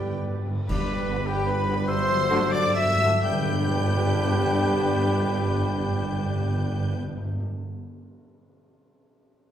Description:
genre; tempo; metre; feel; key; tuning
classical, dramatic, fast romantic movement for symphony orchestra; 81-104 BPM (dotted quarters); 6/8; straight; G major; A4 = 441 Hz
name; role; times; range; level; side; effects
warm symphonic violin section; melody; 0.0-6.9 s; G5 to G6; -35 LUFS; left 2 dB; none
clear oboe; second line; 0.0-7.0 s; B4 to E5; -35 LUFS; equal; none
flute section; second line; 0.0-6.9 s; G4 to G5; -33 LUFS; left 2 dB; none
warm symphonic violin section; second line; 0.0-6.9 s; G4 to G5; -34 LUFS; left 3 dB; none
rich studio viola section; accompaniment; 0.0-6.9 s; D4 to B4; -36 LUFS; left 1 dB; none
warm bassoon; accompaniment; 0.0-0.5, 3.2-6.9 s; G3; -37 LUFS; right 4 dB; none
clear trombone section; sustained chords; 0.0-7.0 s; D3 to B3; -34 LUFS; right 1 dB; none
mellow French horn section; sustained chords; 0.0-7.0 s; B3 to G4; -33 LUFS; left 1 dB; none
concert harp; arpeggios; 0.0-7.8 s; G2 to B5; -34 LUFS; left 3 dB; none
warm trumpet; stabs; 0.0-6.9 s; G4 to E5; -30 LUFS; right 1 dB; none
dark symphonic cello section; bass; 0.0-6.9 s; G2; -31 LUFS; right 2 dB; none
timpani; percussion; 0.0-7.5 s; G2; -30 LUFS; equal; none
warm symphonic double bass section; bass; 0.1-6.9 s; G1 to G2; -34 LUFS; right 3 dB; none
warm tuba; bass; 0.1-6.9 s; G1; -34 LUFS; right 2 dB; none
clash cymbals, concert bass drum and tam-tam; percussion; 0.7-5.2 s; none; -38 LUFS; equal; none
room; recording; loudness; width
wet recital hall reverb, RT60 1.4 s; heard from further back in the room; -22 LUFS; side -10 dB against mid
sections
0.7-3.2 A section; 3.2-6.2 B section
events
timpani fill 0.0-0.7, 1.9-3.2; slowing down 0.1-3.2; band accent 0.7-1.1, 3.2-3.7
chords
0.0 G; 1.9 D7/G; 3.2 G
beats
0.11 | 0.69 1.28 | 1.88 2.52 | 3.24 3.97 | 4.71 5.45

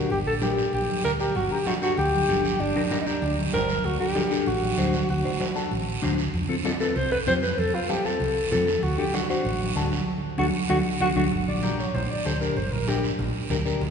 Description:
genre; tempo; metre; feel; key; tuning
latin, cumbia; 193 BPM; 4/4; straight; G harmonic minor; A4 = 441 Hz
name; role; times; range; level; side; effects
warm alto saxophone; melody; 0.0-13.0 s; D4 to D5; -26 LUFS; equal; none
mellow electric guitar; accompaniment; 0.0-13.8 s; C4 to C5; -30 LUFS; left 5 dB; phaser
hollow-body short-scale fingered electric bass; bass; 0.0-13.9 s; G1 to F2; -29 LUFS; right 1 dB; none
congas; percussion; 0.1-13.9 s; none; -30 LUFS; right 2 dB; none
guiro; percussion; 0.1-13.9 s; none; -35 LUFS; right 5 dB; none
room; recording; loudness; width
wet church reverb, RT60 3.3 s; recorded in a church or concert hall, nothing above 10.6 kHz; -22 LUFS; side -6 dB against mid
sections
0.0-1.4 A section; 1.4-11.3 B section; 11.3-13.9 C section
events
band accent 10.1-11.3; drum fill 10.7-11.3; alto saxophone solo 11.3-13.9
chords
0.0 Gm; 3.8 D7; 6.3 F; 8.8 D; 11.3 Gm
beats
| 0.11 0.42 0.73 1.04 | 1.36 1.67 1.98 2.29 | 2.60 2.91 3.23 3.54 | 3.85 4.16 4.47 4.78 | 5.09 5.40 5.71 6.03 | 6.34 6.65 6.96 7.27 | 7.58 7.89 8.21 8.52 | 8.83 9.14 9.45 9.76 | 10.07 10.38 10.70 11.01 | 11.32 11.63 11.94 12.26 | 12.57 12.88 13.19 13.50 | 13.81

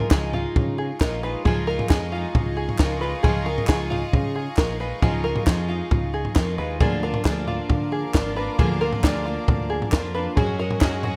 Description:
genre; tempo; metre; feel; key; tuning
indie folk with a building arrangement; 135 BPM; 4/4; straight; unclear; A4 = 440 Hz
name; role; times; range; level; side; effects
fingerpicked steel-string acoustic guitar; accompaniment; 0.0-1.5 s; none; barely audible; none; none
picked twelve-string acoustic guitar; accompaniment; 0.0-11.2 s; Db3 to Gb4; -32 LUFS; equal; none
rich chamber string section; sustained chords; 0.0-11.2 s; Ab4 to D6; -38 LUFS; equal; none
open-back banjo; arpeggios; 0.0-11.2 s; F4 to Cb5; -31 LUFS; equal; none
compact cocktail drum kit; drums; 0.0-11.1 s; kick drum, snare drum, toms; -24 LUFS; equal; none
fingered electric bass; bass; 0.1-11.2 s; Ab1 to D3; -31 LUFS; equal; none
group handclap; percussion; 0.1-10.9 s; none; -38 LUFS; equal; none
warm grand piano; accompaniment; 6.8-11.2 s; Gb1 to F5; -35 LUFS; equal; none
room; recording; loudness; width
light reverb; none; -23 LUFS; mono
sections
0.0-11.2 A section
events
none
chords
0.0 Dbadd9; 6.8 Bb; 10.4 Gbsus2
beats
0.11 0.56 1.00 | 1.45 1.90 2.35 2.79 | 3.24 3.68 4.13 4.58 | 5.02 5.47 5.91 6.36 | 6.80 7.25 7.70 8.14 | 8.59 9.03 9.48 9.92 | 10.37 10.81

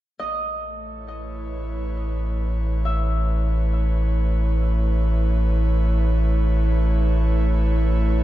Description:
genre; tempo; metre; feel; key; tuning
ambient; free time; none; none; A lydian; A4 = 440 Hz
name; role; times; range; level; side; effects
airy breathy pad; sustained chords; 0.7-8.2 s; A3 to C#5; -28 LUFS; right 2 dB; chorus
Celtic harp; arpeggios; 0.2-5.1 s; D#5 to E5; -31 LUFS; right 1 dB; ping-pong delay
warm sub bass; bass; 0.2-8.2 s; A1; -20 LUFS; equal; none
room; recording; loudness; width
studio reverb; dark, warm production; -19 LUFS; side -14 dB against mid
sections
0.2-8.2 A section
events
fade-in on analog synth pad 0.2-8.2; fade-in on harp 0.2-8.2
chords
0.2 Aadd9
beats
free time

